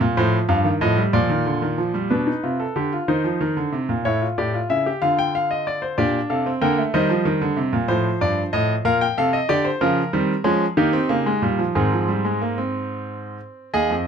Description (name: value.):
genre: classical, baroque-style 4-part fugue for grand piano.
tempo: 62 BPM (dotted quarters).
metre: 6/8.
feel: straight.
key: Ab major from 9.8 s.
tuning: A4 = 440 Hz.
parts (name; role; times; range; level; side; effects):
clear grand piano; solo; 0.0-14.1 s; Eb2 to G5; -18 LUFS; equal; none.
room: light reverb.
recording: close, detailed microphones.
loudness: -18 LUFS.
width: side -7 dB against mid.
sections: 0.0-2.1 A section; 2.1-13.7 B section.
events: none.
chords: 0.2 F7; 1.1 Bb; 2.1 G7/B; 3.1 Cm/Eb; 4.1 A7; 5.0 Dm; 6.0 Gm/Bb; 6.9 Cm7/Eb; 7.9 F7; 8.9 Bb; 9.8 Bbm/Db; 10.8 Eb7; 11.8 Ab.